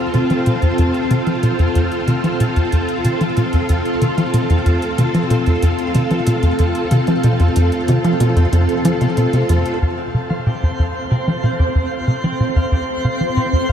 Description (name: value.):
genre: ambient, sequencer-driven space music.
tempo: 93 BPM.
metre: 4/4.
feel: straight.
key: F lydian.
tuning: A4 = 437 Hz.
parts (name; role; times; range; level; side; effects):
string machine, full ensemble; sustained chords; 0.0-13.7 s; C4 to A4; -19 LUFS; equal; ensemble chorus.
tight sequencer bass; riff; 0.1-13.7 s; F2 to F3; -16 LUFS; equal; lush chorus, cassette tape, ping-pong delay.
booming analog drum machine; percussion; 0.1-9.8 s; hi-hat, toms; -29 LUFS; left 1 dB; none.
concert harp; arpeggios; 9.8-13.7 s; C4 to F5; -32 LUFS; left 5 dB; auto-pan, ping-pong delay.
twinkling granular texture; texture; 10.5-13.7 s; C4 to C5; -22 LUFS; right 1 dB; built-in reverb.
room: moderate shimmer reverb, RT60 9.0 s.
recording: none.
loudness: -14 LUFS.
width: side -9 dB against mid.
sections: 0.0-9.8 A section; 9.8-13.7 B section.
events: filter sweep on analog synth bass 0.0-9.8, 9.8-13.7.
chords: 0.0 F.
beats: 0.14 0.79 1.43 | 2.08 2.72 3.37 4.01 | 4.66 5.30 5.95 6.59 | 7.24 7.88 8.53 9.17 | 9.82 10.46 11.11 11.75 | 12.40 13.04 13.69.